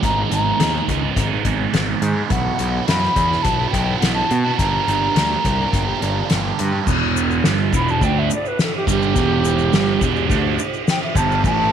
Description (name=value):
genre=psychedelic rock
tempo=105 BPM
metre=4/4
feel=straight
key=E minor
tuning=A4 = 440 Hz
part: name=mellow hollow silver concert flute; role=melody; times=0.0-11.7 s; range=G4 to B5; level=-22 LUFS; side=left 1 dB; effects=tape echo
part: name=biting overdriven guitar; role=riff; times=0.0-11.7 s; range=E2 to G#4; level=-21 LUFS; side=right 11 dB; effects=phaser
part: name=fuzz picked electric bass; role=bass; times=0.0-11.7 s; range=E1 to B2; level=-22 LUFS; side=left 2 dB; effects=overdrive
part: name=soft-mallet drum kit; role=drums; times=0.0-11.6 s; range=crash cymbal, hi-hat, kick drum, ride cymbal, snare drum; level=-22 LUFS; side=left 2 dB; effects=none
part: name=tube shaker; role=percussion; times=6.9-11.6 s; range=none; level=-33 LUFS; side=left 21 dB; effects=none
room=light reverb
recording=1960s-style stereo with parts hard left and right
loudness=-16 LUFS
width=side -8 dB against mid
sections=0.0-6.9 A section; 6.9-11.7 B section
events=flute solo 6.9-11.7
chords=0.0 G#madd9; 2.3 Bsus4; 4.6 Gm; 6.9 Em7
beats=| 0.03 0.60 1.17 1.74 | 2.31 2.88 3.45 4.02 | 4.59 5.16 5.73 6.30 | 6.87 7.45 8.02 8.59 | 9.16 9.73 10.30 10.88 | 11.45